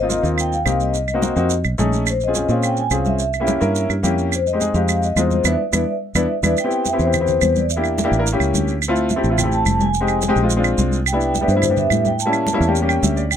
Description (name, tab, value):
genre	Afro-Cuban jazz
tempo	214 BPM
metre	4/4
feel	straight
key	F minor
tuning	A4 = 441 Hz
part	vibraphone with soft mallets	melody	0.0-13.4 s	B4 to A5	-22 LUFS	equal	none
part	warm upright piano	accompaniment	0.0-13.3 s	G3 to G5	-21 LUFS	left 2 dB	none
part	fingered electric bass	bass	0.0-13.4 s	F1 to Bb2	-21 LUFS	right 1 dB	none
part	congas	percussion	0.1-13.4 s	none	-26 LUFS	left 2 dB	none
part	maracas	percussion	0.1-13.4 s	none	-27 LUFS	right 8 dB	none
part	claves	percussion	0.4-13.4 s	none	-23 LUFS	right 8 dB	none
room	light reverb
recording	close, detailed microphones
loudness	-16 LUFS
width	side -9 dB against mid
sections	0.0-6.6 A section; 6.6-13.4 B section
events	band accent 5.5-6.6; drum fill 6.2-6.6; upright piano fill 12.8-13.3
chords	0.0 Ab6; 0.9 Cm7b5; 1.5 F7alt; 2.1 Bbm9; 3.2 C7b9; 4.3 Fm9; 5.5 E5; 6.6 Cmaj7; 7.7 Em7b5; 8.3 A7b9; 8.8 Dm9; 9.9 Fm7; 10.5 Bb9; 11.1 Cmaj7; 12.2 A7b9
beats	0.10 0.38 0.67 | 0.95 1.23 1.51 1.79 | 2.07 2.35 2.63 2.92 | 3.20 3.48 3.76 4.04 | 4.33 4.61 4.89 5.17 | 5.45 5.73 6.01 6.29 | 6.58 6.86 7.14 7.42 | 7.70 7.98 8.26 8.54 | 8.82 9.10 9.38 9.66 | 9.95 10.22 10.51 10.79 | 11.07 11.35 11.63 11.91 | 12.19 12.47 12.75 13.03 | 13.31